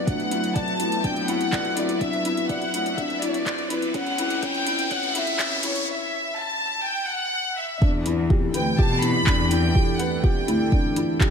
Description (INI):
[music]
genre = piano and strings electronica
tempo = 124 BPM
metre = 4/4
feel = straight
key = E dorian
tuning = A4 = 442 Hz
[part]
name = warm studio violin section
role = melody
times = 0.0-11.2 s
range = B4 to B5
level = -26 LUFS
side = left 1 dB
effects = none
[part]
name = lush unison pad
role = sustained chords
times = 0.0-11.3 s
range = E3 to G4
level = -30 LUFS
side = equal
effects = chorus
[part]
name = felt-muted upright piano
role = riff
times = 0.0-11.3 s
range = C#4 to D5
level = -27 LUFS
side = left 2 dB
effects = none
[part]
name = dark chamber cello section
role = bass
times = 0.1-10.7 s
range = C#2 to B2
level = -29 LUFS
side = equal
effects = sidechain pumping, high-pass filter
[part]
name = deep house drum kit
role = drums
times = 0.1-11.3 s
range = handclaps, hi-hat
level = -31 LUFS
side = equal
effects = overdrive
[part]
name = electronic kick drum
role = drums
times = 0.1-11.3 s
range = none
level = -22 LUFS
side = equal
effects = overdrive
[part]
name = riser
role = sound effects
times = 2.9-5.9 s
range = none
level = -31 LUFS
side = left 1 dB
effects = none
[sound]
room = light reverb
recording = high-pass filter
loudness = -21 LUFS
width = side -6 dB against mid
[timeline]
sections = 0.0-7.8 A section; 7.8-11.3 B section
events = build-up 0.0-7.8; filter sweep 0.0-7.8; riser 2.9-5.9; break 5.9-7.8; drop 7.8-11.3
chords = 0.1 Dadd9; 3.9 A/C# (rootless); 7.8 Em7